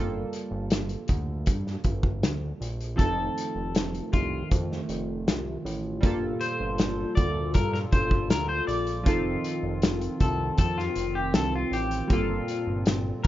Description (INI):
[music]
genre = indie pop, bedroom pop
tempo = 79 BPM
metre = 4/4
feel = straight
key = G minor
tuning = A4 = 440 Hz
[part]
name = chorused retro synth keys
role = accompaniment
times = 0.0-13.3 s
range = F3 to A4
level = -35 LUFS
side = right 3 dB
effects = cassette tape
[part]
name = fat analog bass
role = bass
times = 0.0-13.3 s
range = F1 to G2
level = -32 LUFS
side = equal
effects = none
[part]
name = loose indie drum kit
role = drums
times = 0.3-13.3 s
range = hi-hat, kick drum, snare drum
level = -27 LUFS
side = equal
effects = none
[part]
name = clean electric guitar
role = accompaniment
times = 3.0-13.3 s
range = F4 to D5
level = -31 LUFS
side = left 2 dB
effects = lush chorus, warbly pitch drift
[part]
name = hollow soft pad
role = sustained chords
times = 3.0-13.3 s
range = Bb2 to A4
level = -32 LUFS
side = left 1 dB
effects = chorus
[sound]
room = little or no reverb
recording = rough home demo mix, nothing above 7.5 kHz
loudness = -24 LUFS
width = side -14 dB against mid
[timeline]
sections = 0.0-13.3 A section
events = clean electric guitar solo 0.0-13.3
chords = 0.0 Gm9; 3.0 F7; 6.0 Gm9; 9.1 F7; 12.1 Gm9